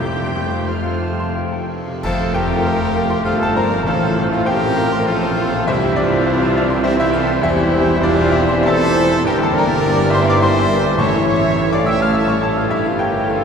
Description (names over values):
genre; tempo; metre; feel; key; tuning
classical, romantic movement for piano and orchestra; 101 BPM; 3/4; uneven beats, rubato; F major; A4 = 440 Hz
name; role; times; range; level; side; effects
bright grand piano; melody; 0.0-13.4 s; A1 to F6; -18 LUFS; left 1 dB; none
dark symphonic violin section; melody; 0.0-13.4 s; C5 to G6; -32 LUFS; left 3 dB; none
clear oboe; second line; 0.0-13.4 s; C5 to F5; -29 LUFS; right 2 dB; none
hollow concert flute; second line; 0.0-13.4 s; E4 to A5; -27 LUFS; left 1 dB; none
mellow clarinet; second line; 0.0-13.4 s; A4 to C5; -29 LUFS; equal; none
rich chamber violin section; second line; 0.0-13.4 s; E4 to A5; -28 LUFS; left 1 dB; none
mellow bassoon; accompaniment; 0.0-13.4 s; E3 to A3; -27 LUFS; right 2 dB; none
warm studio viola section; accompaniment; 0.0-13.4 s; G3 to G4; -26 LUFS; right 1 dB; none
dark French horn section; sustained chords; 0.0-13.4 s; C4 to A4; -28 LUFS; left 1 dB; none
mellow trombone section; sustained chords; 0.0-13.4 s; C3 to Bb3; -28 LUFS; right 2 dB; none
bright trumpet; stabs; 0.0-13.4 s; C4 to F5; -26 LUFS; right 1 dB; none
dark tuba; bass; 0.0-13.4 s; E1 to C2; -26 LUFS; right 2 dB; none
rich chamber double bass section; bass; 0.0-13.4 s; E1 to F2; -26 LUFS; right 2 dB; none
rich studio cello section; bass; 0.0-13.4 s; E2 to G3; -26 LUFS; right 2 dB; none
timpani; percussion; 0.0-4.7, 11.0-11.8 s; F2 to A2; -30 LUFS; left 1 dB; none
clash cymbals and concert bass drum; percussion; 2.0-3.2 s; none; -33 LUFS; equal; none
room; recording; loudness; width
wet cathedral reverb, RT60 4.7 s; minimal, uncompressed stereo recording; -14 LUFS; side -6 dB against mid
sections
0.0-2.0 A section; 2.0-13.4 B section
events
band accent 2.0-2.6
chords
0.0 F; 3.9 F/A; 5.7 C; 7.4 C/E; 9.3 Em7b5/G; 11.0 A; 12.7 A7/G